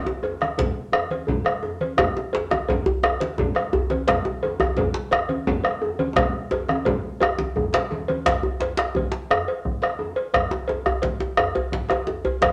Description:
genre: west african traditional, West African drum ensemble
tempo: 115 BPM (dotted quarters)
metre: 12/8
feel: straight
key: none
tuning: none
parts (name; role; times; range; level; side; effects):
- djembe; percussion; 0.1-12.5 s; none; -33 LUFS; equal; none
- djembe; percussion; 0.1-12.5 s; none; -29 LUFS; equal; none
- congas; percussion; 0.2-8.2 s; none; -32 LUFS; equal; none
- cowbell; percussion; 0.2-12.5 s; none; -31 LUFS; equal; none
- bombo; percussion; 0.4-12.5 s; none; -26 LUFS; equal; none
room: wet club reverb, RT60 0.9 s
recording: none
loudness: -23 LUFS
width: mono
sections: 0.0-8.3 A section; 8.3-12.5 A section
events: drum fill 6.2-8.3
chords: none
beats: 0.41 0.94 1.46 | 1.98 2.51 3.03 3.55 | 4.08 4.60 5.12 5.64 | 6.17 6.69 7.21 7.73 | 8.25 8.78 9.30 9.82 | 10.34 10.86 11.38 11.90 | 12.42

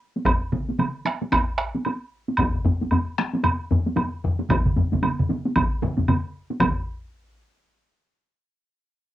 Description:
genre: japanese traditional, taiko drum ensemble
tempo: 114 BPM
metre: 4/4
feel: swing 60% on 16ths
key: none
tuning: none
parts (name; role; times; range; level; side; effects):
- taiko ensemble; percussion; 0.2-6.8 s; none; -26 LUFS; right 1 dB; none
- taiko ensemble; percussion; 0.3-6.8 s; none; -26 LUFS; equal; none
- woodblock; percussion; 0.3-6.8 s; none; -25 LUFS; right 2 dB; none
- taiko ensemble; percussion; 0.5-7.1 s; none; -27 LUFS; right 2 dB; none
- taiko ensemble; percussion; 2.4-7.1 s; none; -24 LUFS; left 2 dB; none
room: wet booth ambience, RT60 0.2 s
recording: home recording on cassette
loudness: -21 LUFS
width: side -13 dB against mid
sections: 0.0-6.6 A section; 6.6-8.7 B section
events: none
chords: none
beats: | 0.27 0.80 1.33 1.86 | 2.39 2.92 3.45 3.98 | 4.50 5.03 5.55 6.08 | 6.60

